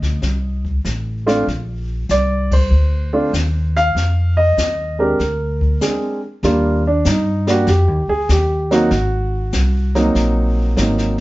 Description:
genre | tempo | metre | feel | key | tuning
jazz piano trio | 97 BPM | 4/4 | swing 68% on 8ths | Bb major | A4 = 438 Hz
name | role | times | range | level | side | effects
warm grand piano | melody | 0.0-11.1 s | Gb3 to F5 | -17 LUFS | right 1 dB | none
upright bass | bass | 0.0-11.2 s | Ab1 to G2 | -18 LUFS | equal | none
jazz brush drum kit | drums | 0.0-11.2 s | brushed snare drum, hi-hat, kick drum, ride cymbal, snare drum | -23 LUFS | left 1 dB | none
room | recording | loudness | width
moderate studio reverb, RT60 0.6 s | band playing live in one room, nothing above 7.6 kHz | -15 LUFS | side -18 dB against mid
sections
0.0-6.4 A section; 6.4-11.2 B section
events
band accent 2.4-2.7; break 5.8-6.4; grand piano solo 6.4-11.2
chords
0.0 F7 (rootless); 1.5 Bbadd9; 4.0 F7(no3); 5.2 Bb9; 6.4 Ebmaj7; 8.9 Ab9

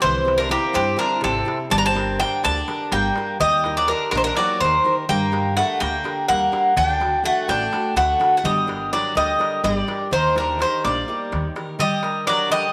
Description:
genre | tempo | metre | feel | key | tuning
greek folk, Greek bouzouki band | 250 BPM (eighths) | 7/8 | straight | unclear | A4 = 441 Hz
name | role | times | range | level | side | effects
Greek bouzouki | melody | 0.0-12.7 s | G4 to Bb5 | -22 LUFS | equal | none
Greek bouzouki | second line | 0.0-12.7 s | C3 to D4 | -30 LUFS | equal | none
picked steel-string acoustic guitar | accompaniment | 0.0-12.7 s | C3 to Bb4 | -31 LUFS | equal | none
upright bass | bass | 0.0-11.5 s | G1 to G2 | -31 LUFS | equal | none
darbuka | percussion | 0.0-12.6 s | none | -34 LUFS | equal | none
room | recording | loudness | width
wet echo chamber reverb, RT60 1.7 s | none | -20 LUFS | mono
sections
0.0-11.8 A section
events
none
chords
0.0 C; 1.7 Gm; 3.4 Eb; 5.1 Gm; 6.8 D; 8.4 Gm; 10.1 Eb; 11.8 Gm

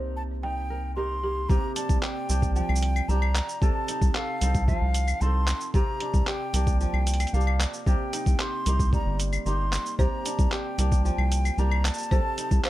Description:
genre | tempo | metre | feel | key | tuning
folktronica | 113 BPM | 4/4 | straight | unclear | A4 = 443 Hz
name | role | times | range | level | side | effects
folk marimba with medium hard mallets | second line | 0.0-1.4, 10.0-12.7 s | G4 to G5 | -35 LUFS | right 1 dB | plate reverb, tape echo
kora | arpeggios | 0.0-12.7 s | C3 to Bb4 | -32 LUFS | right 1 dB | plate reverb
round analog bass | bass | 0.0-12.6 s | G1 to C2 | -24 LUFS | equal | none
wooden flute | melody | 0.2-12.7 s | F5 to C6 | -33 LUFS | equal | plate reverb, tape echo
electronic kick drum | drums | 1.5-12.6 s | none | -26 LUFS | equal | overdrive, studio ambience
lo-fi sampler-style drum kit | drums | 1.5-12.7 s | cabasa, claves, handclaps, hi-hat | -32 LUFS | equal | overdrive, low-pass filter on perc, studio ambience, low-pass filter on hats, low-pass filter on snare
room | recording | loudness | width
little or no reverb | none | -23 LUFS | side -16 dB against mid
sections
0.0-1.5 A section; 1.5-12.7 B section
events
none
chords
0.0 Cm7; 1.5 Bb69/C; 3.6 F7/C; 5.7 Gm7/C; 7.9 Cm7; 10.0 Bb69/C; 12.1 F7/C

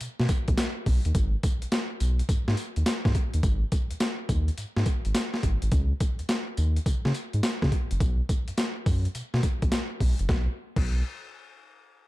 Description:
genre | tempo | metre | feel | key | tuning
R&B, new jack swing | 105 BPM | 4/4 | swing 66% on 16ths | unclear | A4 = 440 Hz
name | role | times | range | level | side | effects
round analog bass | bass | 0.0-11.0 s | F#1 to C#3 | -25 LUFS | equal | none
boom bap sampler-style drum kit | drums | 0.0-10.9 s | crash cymbal, hi-hat, kick drum, snare drum, tambourine | -26 LUFS | equal | overdrive
room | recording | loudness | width
little or no reverb | dark, warm production | -24 LUFS | side -18 dB against mid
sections
0.0-1.1 A section; 1.1-10.3 B section; 10.3-12.1 C section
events
none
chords
none

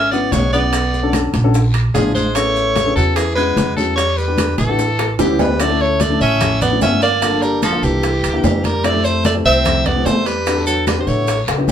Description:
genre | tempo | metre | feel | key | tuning
Afro-Cuban jazz | 148 BPM | 4/4 | straight | A major | A4 = 441 Hz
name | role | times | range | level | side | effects
edgy soprano saxophone | melody | 0.0-11.7 s | G4 to E5 | -19 LUFS | equal | none
warm tenor saxophone | second line | 0.0-11.7 s | E3 to C#4 | -22 LUFS | right 3 dB | none
upright bass | bass | 0.0-11.7 s | G1 to F2 | -20 LUFS | right 1 dB | none
dark baby grand piano | accompaniment | 0.1-11.7 s | A3 to A4 | -21 LUFS | left 4 dB | none
bongos | percussion | 0.1-11.7 s | none | -26 LUFS | left 6 dB | none
congas | percussion | 0.1-11.7 s | none | -23 LUFS | left 1 dB | none
maracas | percussion | 0.1-11.7 s | none | -33 LUFS | right 5 dB | none
guiro | percussion | 0.3-11.7 s | none | -34 LUFS | left 3 dB | none
timbales | percussion | 0.3-11.7 s | none | -24 LUFS | right 3 dB | none
claves | percussion | 0.7-11.7 s | none | -32 LUFS | right 3 dB | none
room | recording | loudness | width
wet studio reverb, RT60 0.5 s | band playing live in one room | -13 LUFS | side -9 dB against mid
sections
0.0-5.6 A section; 5.6-11.7 B section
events
drum fill 4.8-5.6, 11.5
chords
0.0 C#m7; 0.7 Bm7; 1.5 Bb7#11; 2.4 Amaj9; 4.0 Em7; 4.8 A9; 5.6 Dmaj9; 7.2 Gm7; 8.0 C7; 8.8 Fmaj7; 10.5 Em7

